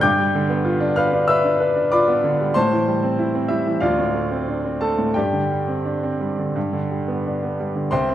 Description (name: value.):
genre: classical, virtuoso piano study.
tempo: 86-97 BPM.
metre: 4/4.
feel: rubato.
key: unclear.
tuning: A4 = 442 Hz.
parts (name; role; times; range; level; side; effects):
bright grand piano; solo; 0.0-8.1 s; C2 to G6; -18 LUFS; equal; none.
room: wet scoring stage reverb, RT60 1.6 s.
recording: none.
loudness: -18 LUFS.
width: side -12 dB against mid.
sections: 0.0-7.9 A section.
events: none.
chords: 0.0 G7; 2.5 Am7; 3.8 Dm7; 5.2 Gsus4; 6.6 G.